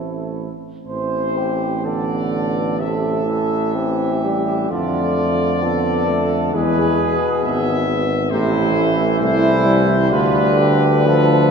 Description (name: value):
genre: classical, hymn-like piece for brass band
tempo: 56-69 BPM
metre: 4/4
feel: rubato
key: A minor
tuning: A4 = 440 Hz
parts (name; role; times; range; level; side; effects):
- mellow flugelhorn; second line; 0.0-11.5 s; E4 to C5; -23 LUFS; right 6 dB; none
- brilliant trombone; accompaniment; 0.0-11.5 s; B2 to A3; -24 LUFS; right 2 dB; none
- warm euphonium; accompaniment; 0.0-11.5 s; F3 to C4; -23 LUFS; left 2 dB; none
- warm tuba; bass; 0.0-11.5 s; G#1 to F2; -20 LUFS; right 1 dB; none
- bright trumpet section; melody; 0.9-11.5 s; B4 to E5; -24 LUFS; left 8 dB; none
room: wet concert hall reverb, RT60 2.5 s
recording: minimal, uncompressed stereo recording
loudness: -15 LUFS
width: side -6 dB against mid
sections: 0.9-11.5 A section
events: none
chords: 0.0 Am; 4.7 Dm/F; 6.5 E; 8.3 Am; 10.1 Bdim/D